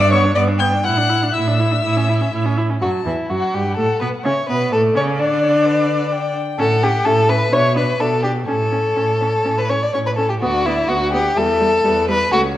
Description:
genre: quick classical-period movement for string quartet.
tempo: 126 BPM.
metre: 4/4.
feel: straight.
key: unclear.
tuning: A4 = 443 Hz.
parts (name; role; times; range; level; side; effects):
warm violin; melody; 0.0-12.6 s; B4 to G6; -26 LUFS; left 6 dB; none.
rich violin; second line; 0.0-12.4 s; E4 to G5; -18 LUFS; left 2 dB; none.
rich viola; accompaniment; 0.0-12.4 s; E3 to E4; -22 LUFS; right 1 dB; none.
bright cello; bass; 0.0-12.6 s; C#2 to D3; -21 LUFS; right 2 dB; none.
room: moderate recital hall reverb, RT60 1.4 s.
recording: worn, warbling old tape, cassette tape, warbly pitch drift.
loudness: -15 LUFS.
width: side -13 dB against mid.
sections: 0.0-2.8 A section; 2.8-12.6 B section.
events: none.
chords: 0.0 G; 0.8 Asus4; 1.8 A; 2.8 A7sus2/E; 4.7 D5/A; 5.7 G/D; 6.6 A; 7.5 Bm; 8.5 A; 10.4 Bm/D; 11.4 Em.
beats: 0.36 | 0.85 1.34 1.84 2.33 | 2.82 3.30 3.78 4.25 | 4.72 5.19 5.66 6.12 | 6.59 7.05 7.52 8.00 | 8.48 8.97 9.45 9.94 | 10.42 10.90 11.37 11.85 | 12.33.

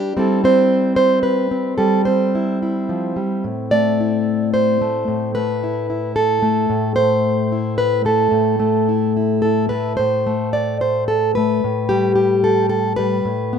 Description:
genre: folk, solo fingerstyle acoustic guitar.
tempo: 110 BPM.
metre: 3/4.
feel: rubato.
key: A minor.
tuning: A4 = 439 Hz.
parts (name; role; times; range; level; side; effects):
fingerpicked plugged-in steel-string acoustic guitar; solo; 0.0-13.6 s; A2 to D5; -16 LUFS; equal; none.
room: light reverb, small room reverb.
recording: rough home demo mix.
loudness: -15 LUFS.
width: side -7 dB against mid.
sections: 0.0-10.0 A section; 10.0-13.6 B section.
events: none.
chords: 0.2 C6/G; 3.4 Am; 10.0 N.C.; 11.6 G/A.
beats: | 0.17 0.70 1.24 | 1.78 2.33 2.88 | 3.44 4.00 4.55 | 5.09 5.63 6.16 | 6.70 7.24 7.79 | 8.33 8.87 9.43 | 9.99 10.55 11.10 | 11.64 12.18 12.72 | 13.25.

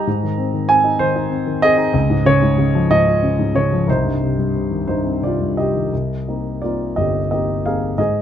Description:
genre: classical, lyrical solo piano.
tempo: 56-64 BPM (dotted quarters).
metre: 6/8.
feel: rubato.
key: C minor.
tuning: A4 = 441 Hz.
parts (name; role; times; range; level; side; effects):
dark concert grand piano; solo; 0.0-8.2 s; G1 to Bb5; -15 LUFS; equal; none.
room: little or no reverb.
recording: close, detailed microphones.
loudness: -15 LUFS.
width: side -9 dB against mid.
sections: 0.0-5.9 A section; 5.9-8.2 A section.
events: none.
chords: 0.1 Ab; 1.9 Db; 3.9 Cm; 5.9 Cm7.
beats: | 0.07 1.00 | 1.95 2.91 | 3.88 4.87 | 5.92 6.97 | 7.99.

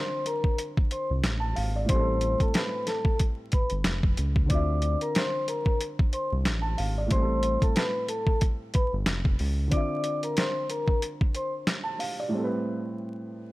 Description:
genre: hip hop, boom-bap hip-hop.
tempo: 92 BPM.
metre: 4/4.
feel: swing 57% on 16ths.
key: D minor.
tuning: A4 = 445 Hz.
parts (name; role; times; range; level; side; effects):
vibraphone with soft mallets; melody; 0.0-11.5 s; A4 to D6; -30 LUFS; left 2 dB; high-pass filter, low-pass filter.
dark baby grand piano; accompaniment; 0.0-13.5 s; A2 to A5; -33 LUFS; right 1 dB; cassette tape, high-pass filter, low-pass filter.
boom bap sampler-style drum kit; drums; 0.3-12.2 s; hi-hat, kick drum, snare drum; -26 LUFS; equal; none.
round analog bass; bass; 1.1-9.7 s; F1 to D2; -27 LUFS; equal; none.
room: small room ambience.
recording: vinyl crackle.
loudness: -24 LUFS.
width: side -19 dB against mid.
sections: 0.0-13.5 A section.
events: break 9.7-13.5; drums muted 12.3-13.5.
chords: 0.0 Dm9; 1.9 Am9; 4.5 Dm9; 7.1 Am9; 9.7 Dm9; 12.3 Am9.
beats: 0.59 1.24 | 1.89 2.55 3.20 3.85 | 4.50 5.16 5.81 6.46 | 7.11 7.76 8.42 9.07 | 9.72 10.37 11.02 11.68 | 12.33 12.98.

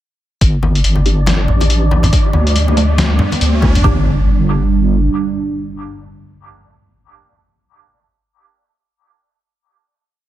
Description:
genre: deep dubstep.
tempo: 140 BPM.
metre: 4/4.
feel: swing 58% on 16ths, half-time.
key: G minor.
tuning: A4 = 442 Hz.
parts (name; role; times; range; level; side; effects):
dark analog pad; sustained chords; 0.4-6.8 s; G3 to D4; -21 LUFS; right 6 dB; lush chorus.
deep soft wobble bass; bass; 0.4-5.1 s; G1 to D2; -13 LUFS; equal; chorus.
electronic kick drum; drums; 0.4-3.9 s; none; -14 LUFS; equal; none.
trip hop sampler-style drum kit; drums; 0.4-3.8 s; hi-hat, snare drum; -19 LUFS; left 2 dB; none.
riser and impact; sound effects; 1.9-6.8 s; none; -24 LUFS; equal; none.
wind-like tuned noise texture; texture; 0.8-3.9 s; D4 to D5; -24 LUFS; equal; built-in reverb.
congas; percussion; 0.6-3.8 s; none; -19 LUFS; left 2 dB; none.
filtered dub chord stab; stabs; 1.1-6.8 s; F3 to G4; -23 LUFS; right 2 dB; phaser, wide subtle chorus, dub echo.
room: digital ambience.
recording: none.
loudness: -11 LUFS.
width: side -13 dB against mid.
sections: 0.4-3.8 build; 3.8-7.3 final chord.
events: build-up 0.4-3.8; filter sweep on synth stab 0.4-3.8; riser 1.9-3.8.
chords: 0.4 Gm; 2.1 N.C.; 3.8 Gm.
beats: | 0.41 0.84 1.27 1.70 | 2.13 2.56 2.98 3.41 | 3.84 4.27 4.70 5.13 | 5.56 5.99 6.41 6.84.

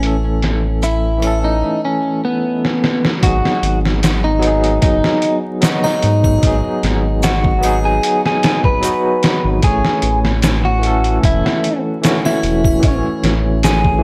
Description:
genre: trip hop.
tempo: 75 BPM.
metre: 4/4.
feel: straight.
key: G# phrygian.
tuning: A4 = 440 Hz.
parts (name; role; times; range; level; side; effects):
electric guitar at the edge of break-up; melody; 0.0-14.0 s; B3 to B4; -21 LUFS; equal; tape echo.
barky tine electric piano; accompaniment; 0.0-14.0 s; E3 to C#5; -22 LUFS; equal; tremolo.
round analog bass; bass; 0.0-14.0 s; E1 to G#2; -20 LUFS; equal; none.
trip hop sampler-style drum kit; drums; 0.0-14.0 s; hi-hat, kick drum, snare drum; -19 LUFS; equal; low-pass filter on hats, low-pass filter on snare, low-pass filter on kick, low-pass filter on room.
egg shaker and triangle; percussion; 0.8-13.8 s; none; -37 LUFS; equal; none.
room: light reverb, digital ambience.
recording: dry, gritty hardware recording, vinyl crackle.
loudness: -15 LUFS.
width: mono.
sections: 0.0-3.2 A section; 3.2-14.0 B section.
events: drum fill 2.6-3.2.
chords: 0.0 A; 3.2 G#m7; 9.6 A.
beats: | 0.03 0.83 1.63 2.43 | 3.23 4.03 4.83 5.63 | 6.43 7.23 8.03 8.83 | 9.63 10.43 11.23 12.03 | 12.83 13.63.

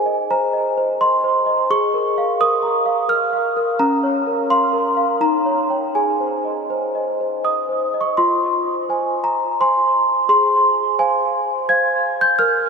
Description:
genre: classical, lullaby for celesta.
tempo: 85 BPM.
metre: 3/4.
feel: straight.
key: Ab major, F minor from 8.2 s.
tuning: A4 = 440 Hz.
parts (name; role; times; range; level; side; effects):
celesta; solo; 0.0-12.7 s; Db4 to Ab6; -16 LUFS; equal; analog delay.
room: wet huge ambient reverb, RT60 7.3 s.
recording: dreamy mix soaked in reverb.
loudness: -16 LUFS.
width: side -5 dB against mid.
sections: 0.0-8.2 A section; 8.2-12.7 B section.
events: none.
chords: 0.0 Ab; 1.7 Bbm7/Ab; 3.8 Bbm/Db; 5.2 Eb7; 5.9 Ab; 8.2 Fm; 10.3 Fm/Ab.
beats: 0.29 1.00 | 1.70 2.40 3.09 | 3.79 4.50 5.21 | 5.95 6.69 7.43 | 8.17 8.88 9.59 | 10.29 10.99 11.70 | 12.40.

